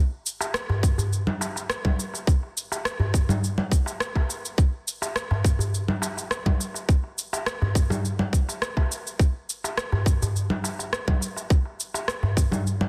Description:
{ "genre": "downtempo", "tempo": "104 BPM", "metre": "4/4", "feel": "straight", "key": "none", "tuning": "none", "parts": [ { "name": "electronic cabasa, rim click and congas", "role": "drums", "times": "0.3-12.9 s", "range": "none", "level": "-31 LUFS", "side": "equal", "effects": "soft clipping on snare" }, { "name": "darbuka", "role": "percussion", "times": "0.4-12.6 s", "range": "none", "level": "-30 LUFS", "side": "equal", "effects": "none" }, { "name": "electronic kick drum", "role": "drums", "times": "0.8-12.5 s", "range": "none", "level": "-23 LUFS", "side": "equal", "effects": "none" } ], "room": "light reverb", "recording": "dense, heavily limited modern master, faint mains hum", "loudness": "-25 LUFS", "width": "mono", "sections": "0.0-12.9 A section", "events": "none", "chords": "none" }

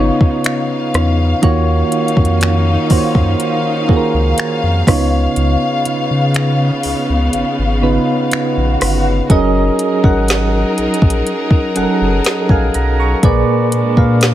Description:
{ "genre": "contemporary R&B", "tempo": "61 BPM", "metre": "4/4", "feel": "straight", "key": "F# major", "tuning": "A4 = 443 Hz", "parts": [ { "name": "soft electric-piano-like synth keys", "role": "accompaniment", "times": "0.0-14.3 s", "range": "A#2 to C#6", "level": "-16 LUFS", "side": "right 2 dB", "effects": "chorus, tremolo" }, { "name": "warm studio string section", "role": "sustained chords", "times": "0.0-14.3 s", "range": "C#3 to E#5", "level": "-20 LUFS", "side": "left 2 dB", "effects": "sidechain pumping" }, { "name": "warm sub bass", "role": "bass", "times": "0.0-14.3 s", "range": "F#1 to C#3", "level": "-16 LUFS", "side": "equal", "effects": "none" }, { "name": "smooth R&B drum kit", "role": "drums", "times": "0.2-14.3 s", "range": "finger snaps, hi-hat, kick drum, rim click, snare drum", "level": "-14 LUFS", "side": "equal", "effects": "none" } ], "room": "digital ambience", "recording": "none", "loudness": "-12 LUFS", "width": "side -12 dB against mid", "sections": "0.0-9.3 A section; 9.3-14.3 B section", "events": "kick muted 5.4-9.3", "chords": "0.0 C#9; 1.4 D#m9; 4.9 C#7; 9.3 F#69; 13.2 A#7b9" }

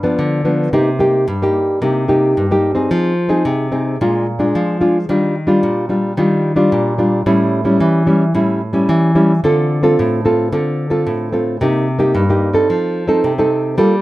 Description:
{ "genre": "samba", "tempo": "110 BPM", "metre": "4/4", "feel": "straight", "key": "unclear", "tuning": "A4 = 440 Hz", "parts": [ { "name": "nylon-string guitar", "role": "solo", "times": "0.0-14.0 s", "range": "G2 to A4", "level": "-13 LUFS", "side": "equal", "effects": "none" } ], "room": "moderate studio reverb, RT60 0.6 s", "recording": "none", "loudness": "-13 LUFS", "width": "side -17 dB against mid", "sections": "0.0-13.8 A section", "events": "none", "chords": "0.0 G7; 0.7 Cm7; 2.9 Fm7; 4.0 Bb7; 5.1 Ebmaj9; 7.3 A7; 9.4 Dm7; 11.6 Cm7; 12.7 F7" }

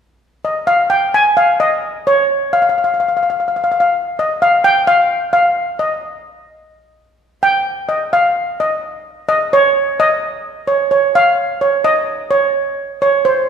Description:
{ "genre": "calypso", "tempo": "129 BPM", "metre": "4/4", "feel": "straight", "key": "unclear", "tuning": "A4 = 440 Hz", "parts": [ { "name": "steel pan", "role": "solo", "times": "0.4-13.5 s", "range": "C5 to Ab5", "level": "-12 LUFS", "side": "equal", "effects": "none" } ], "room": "wet recital hall reverb, RT60 1.6 s", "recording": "recorded in a church or concert hall, faint mains hum", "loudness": "-12 LUFS", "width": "side -7 dB against mid", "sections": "0.4-7.9 A section; 7.9-13.5 B section", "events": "none", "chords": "none" }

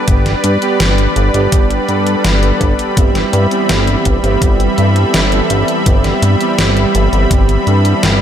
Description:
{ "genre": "synthwave", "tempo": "83 BPM", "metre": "4/4", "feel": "straight", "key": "unclear", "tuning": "A4 = 441 Hz", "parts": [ { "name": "soft supersaw", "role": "sustained chords", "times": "0.0-8.2 s", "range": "G3 to B5", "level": "-16 LUFS", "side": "left 1 dB", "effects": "sidechain pumping" }, { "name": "analog synth brass", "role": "stabs", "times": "0.0-8.2 s", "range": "E3 to A4", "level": "-18 LUFS", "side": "right 4 dB", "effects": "chorus, ping-pong delay" }, { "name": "chorused synth bass", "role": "bass", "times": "0.1-8.2 s", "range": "G1 to G2", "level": "-14 LUFS", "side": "equal", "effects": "tube saturation" }, { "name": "detuned 8-bit digital drum machine", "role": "drums", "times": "0.1-8.2 s", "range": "hi-hat, snare drum", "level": "-18 LUFS", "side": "equal", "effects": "gated reverb" }, { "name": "electronic kick drum", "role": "drums", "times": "0.1-7.5 s", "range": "none", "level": "-13 LUFS", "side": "equal", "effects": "none" } ], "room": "light reverb, digital ambience", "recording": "none", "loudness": "-10 LUFS", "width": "side -9 dB against mid", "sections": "0.0-8.2 A section", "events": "none", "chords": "0.0 G; 3.0 Cmaj7/G" }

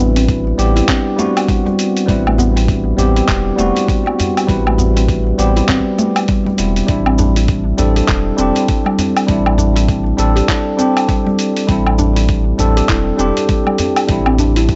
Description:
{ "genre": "organic downtempo", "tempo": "100 BPM", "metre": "4/4", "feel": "swing 59% on 16ths", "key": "A dorian", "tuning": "A4 = 440 Hz", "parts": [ { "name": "tine electric piano", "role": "accompaniment", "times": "0.0-14.8 s", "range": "G3 to B4", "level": "-19 LUFS", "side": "equal", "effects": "lush chorus, sidechain pumping, analog delay" }, { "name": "mallet-like synth pluck", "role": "arpeggios", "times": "0.0-14.8 s", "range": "G3 to G4", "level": "-23 LUFS", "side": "equal", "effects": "chorus, phaser, analog delay" }, { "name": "warm sub bass", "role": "bass", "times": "0.0-14.8 s", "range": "E1 to A1", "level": "-18 LUFS", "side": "equal", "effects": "tube saturation, sidechain pumping" }, { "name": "bronze singing bowl", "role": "texture", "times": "0.0-14.8 s", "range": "none", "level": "barely audible", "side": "none", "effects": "none" }, { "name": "dusty soul sampler-style drum kit", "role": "drums", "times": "0.2-14.8 s", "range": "handclaps, hi-hat, shaker, woodblock", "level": "-23 LUFS", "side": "equal", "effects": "overdrive" }, { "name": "electronic kick drum", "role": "drums", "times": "0.3-14.8 s", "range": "none", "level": "-21 LUFS", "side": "equal", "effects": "overdrive" }, { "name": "djembe", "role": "percussion", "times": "0.5-14.5 s", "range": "none", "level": "-25 LUFS", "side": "equal", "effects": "none" } ], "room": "light reverb", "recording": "dry, gritty hardware recording, transformer saturation, cassette tape, nothing above 7.9 kHz", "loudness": "-14 LUFS", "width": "mono", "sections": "0.0-14.8 A section", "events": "none", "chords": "0.0 Am9; 6.9 Cadd9" }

